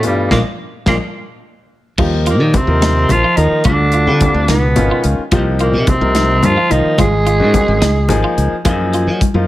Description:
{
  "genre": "electric jazz fusion",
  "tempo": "72 BPM (dotted quarters)",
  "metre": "6/8",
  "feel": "straight",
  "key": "unclear",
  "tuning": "A4 = 438 Hz",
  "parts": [
    { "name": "growling tenor saxophone", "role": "melody", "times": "0.0-8.3 s", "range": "G3 to Ab4", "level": "-16 LUFS", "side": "equal", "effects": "slapback echo" },
    { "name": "breathy bass clarinet", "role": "second line", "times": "0.0-8.3 s", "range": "G2 to Ab3", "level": "-20 LUFS", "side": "right 2 dB", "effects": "none" },
    { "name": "bright grand piano", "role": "accompaniment", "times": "0.0-9.5 s", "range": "B2 to Bb4", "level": "-19 LUFS", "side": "left 3 dB", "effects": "none" },
    { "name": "semi-hollow electric guitar", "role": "stabs", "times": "0.0-9.1 s", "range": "Bb3 to F4", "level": "-24 LUFS", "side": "right 2 dB", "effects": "wide subtle chorus" },
    { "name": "modern studio drum kit", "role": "drums", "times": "0.0-9.3 s", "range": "crash cymbal, hi-hat, kick drum, snare drum", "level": "-19 LUFS", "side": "equal", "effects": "none" },
    { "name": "modern bright fingered electric bass", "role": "bass", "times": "0.3-9.5 s", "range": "Ab1 to Gb3", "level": "-16 LUFS", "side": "equal", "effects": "none" },
    { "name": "congas", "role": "percussion", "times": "0.3-9.3 s", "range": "none", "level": "-20 LUFS", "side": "left 2 dB", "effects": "none" }
  ],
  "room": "light reverb",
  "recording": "none",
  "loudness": "-11 LUFS",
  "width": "side -15 dB against mid",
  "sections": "0.0-2.0 A section; 2.0-9.5 B section",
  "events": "band accent 0.3-2.0; drum fill 1.2-2.0; grand piano fill 1.2-2.0",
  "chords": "0.3 Bb7; 2.0 Eb69; 3.7 Dmadd11; 4.5 Db9; 5.3 Cm7; 7.0 Ab5; 7.8 Db69; 8.7 Gbmaj9"
}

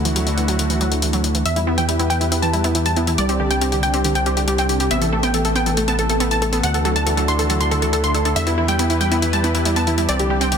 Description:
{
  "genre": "uplifting trance",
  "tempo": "139 BPM",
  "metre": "4/4",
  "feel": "straight",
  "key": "E minor",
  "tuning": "A4 = 440 Hz",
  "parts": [
    { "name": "lush unison pad", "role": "sustained chords", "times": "0.0-10.6 s", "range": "C3 to B4", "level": "-26 LUFS", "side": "equal", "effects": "chorus" },
    { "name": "gritty driven synth bass", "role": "bass", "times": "0.0-10.6 s", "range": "A1 to E2", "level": "-21 LUFS", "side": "equal", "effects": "none" },
    { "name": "wide unison pluck", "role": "arpeggios", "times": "0.1-10.6 s", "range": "D3 to D4", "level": "-24 LUFS", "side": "right 2 dB", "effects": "auto-pan, dub echo" },
    { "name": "electronic hi-hat", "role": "drums", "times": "0.1-10.6 s", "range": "none", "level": "-25 LUFS", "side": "left 5 dB", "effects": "none" },
    { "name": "wide unison pluck", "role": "melody", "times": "1.5-10.6 s", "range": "E4 to C6", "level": "-20 LUFS", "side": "equal", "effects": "dub echo" }
  ],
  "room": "light reverb, digital ambience",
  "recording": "dense, heavily limited modern master",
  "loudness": "-16 LUFS",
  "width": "side -7 dB against mid",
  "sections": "0.0-10.6 A section",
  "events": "filter sweep on synth arpeggio sound 0.0-10.6",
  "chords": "0.0 Dadd9; 1.5 Em; 3.2 Csus2; 4.9 Amadd9; 6.6 Dadd9; 8.4 Em"
}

